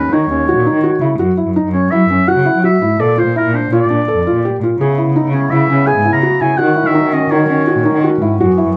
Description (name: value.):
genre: contemporary instrumental, chamber music in an uneven meter.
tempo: 167 BPM.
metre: 5/4.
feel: straight.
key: unclear.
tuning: A4 = 440 Hz.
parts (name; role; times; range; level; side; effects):
warm oboe; melody; 0.0-8.0 s; A#4 to A#5; -20 LUFS; equal; none.
felt-muted upright piano; arpeggios; 0.0-8.7 s; C#4 to A4; -17 LUFS; equal; none.
muted cello; bass; 0.1-8.8 s; D#2 to F#3; -18 LUFS; equal; none.
hand-pumped harmonium; sustained chords; 4.8-8.8 s; C#3 to F#4; -24 LUFS; equal; none.
room: light reverb.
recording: nothing above 10.6 kHz.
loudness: -13 LUFS.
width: mono.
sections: 0.0-8.8 A section.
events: none.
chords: 0.0 D#m7; 1.2 F#5; 3.0 A#; 4.8 C#m7; 6.6 D#m7.